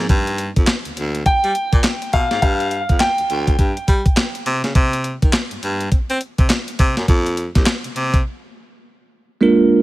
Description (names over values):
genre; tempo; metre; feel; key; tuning
R&B, new jack swing; 103 BPM; 4/4; swing 62% on 16ths; unclear; A4 = 440 Hz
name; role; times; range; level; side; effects
bell-like tine electric piano; accompaniment; 0.0-0.1, 9.4-9.8 s; Ab3 to Bb4; -13 LUFS; right 3 dB; phaser
clear baritone saxophone; bass; 0.0-8.2 s; C2 to C4; -21 LUFS; equal; none
clean 12-bit digital drum machine; drums; 0.1-8.2 s; handclaps, hi-hat, kick drum, snare drum; -17 LUFS; equal; none
warm grand piano; melody; 1.3-4.4 s; F5 to G5; -20 LUFS; equal; digital delay
room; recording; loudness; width
light reverb, digital ambience; none; -15 LUFS; side -17 dB against mid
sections
0.1-9.4 A section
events
break 8.2-9.4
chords
0.1 G5; 4.5 C5; 7.1 F5